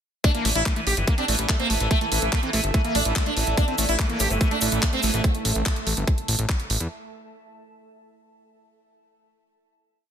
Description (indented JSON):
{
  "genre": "psychedelic trance",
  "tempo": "144 BPM",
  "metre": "4/4",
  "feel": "straight",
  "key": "A phrygian",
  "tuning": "A4 = 440 Hz",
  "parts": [
    { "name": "sitar", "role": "melody", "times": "0.2-5.2 s", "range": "E3 to G4", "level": "-26 LUFS", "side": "right 1 dB", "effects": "phaser, sidechain pumping, tape echo" },
    { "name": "screaming distorted acid line", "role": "riff", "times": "0.2-5.1 s", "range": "A3 to C4", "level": "-31 LUFS", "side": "moving between left 7 dB and right 7 dB", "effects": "distortion, chorus, auto-pan, sidechain pumping, tape echo" },
    { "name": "electronic kick drum", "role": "drums", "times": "0.2-6.6 s", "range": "none", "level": "-22 LUFS", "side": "equal", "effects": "studio reverb" },
    { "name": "garage drum kit", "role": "drums", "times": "0.2-6.9 s", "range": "handclaps, hi-hat", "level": "-26 LUFS", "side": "right 1 dB", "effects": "studio reverb, soft clipping on snare" },
    { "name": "granular cloud pad", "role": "texture", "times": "1.2-5.2 s", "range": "A4 to A5", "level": "-33 LUFS", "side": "right 2 dB", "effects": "built-in reverb, sidechain pumping" },
    { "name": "fat analog bass", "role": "bass", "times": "0.5-6.9 s", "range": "G1 to E2", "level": "-25 LUFS", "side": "equal", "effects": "none" },
    { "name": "bubbling stepped-filter texture", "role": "sustained chords", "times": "3.9-5.3 s", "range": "A3", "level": "-32 LUFS", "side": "right 5 dB", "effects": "chorus, built-in reverb, sidechain pumping" },
    { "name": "tube shaker", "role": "percussion", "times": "3.6-5.2 s", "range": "none", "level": "-30 LUFS", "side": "right 1 dB", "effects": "none" },
    { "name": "vowel-sweep wobble bass", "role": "second line", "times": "4.2-5.3 s", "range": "A3 to C4", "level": "-40 LUFS", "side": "left 2 dB", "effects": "none" }
  ],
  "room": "light reverb",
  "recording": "dense, heavily limited modern master",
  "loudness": "-20 LUFS",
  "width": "side -8 dB against mid",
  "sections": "0.2-6.9 drop",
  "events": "drop 0.2-6.9",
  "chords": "0.2 A5"
}